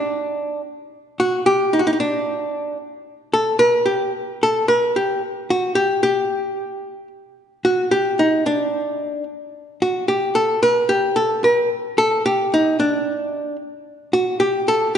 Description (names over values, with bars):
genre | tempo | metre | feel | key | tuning
arabic | 111 BPM | 4/4 | straight | G maqam suznak | A4 = 440 Hz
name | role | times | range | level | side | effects
archtop guitar, miked and amplified | solo | 0.0-15.0 s | D4 to Bb4+50c | -17 LUFS | equal | none
room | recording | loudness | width
moderate concert hall reverb, RT60 2.1 s | nothing above 10.7 kHz | -17 LUFS | side -8 dB against mid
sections
0.0-15.0 A section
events
none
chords
none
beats
0.38 | 0.92 1.46 2.00 2.54 | 3.08 3.61 4.15 4.69 | 5.23 5.77 6.31 6.85 | 7.39 7.93 8.46 9.01 | 9.54 10.08 10.62 11.16 | 11.70 12.24 12.78 13.32 | 13.86 14.40 14.94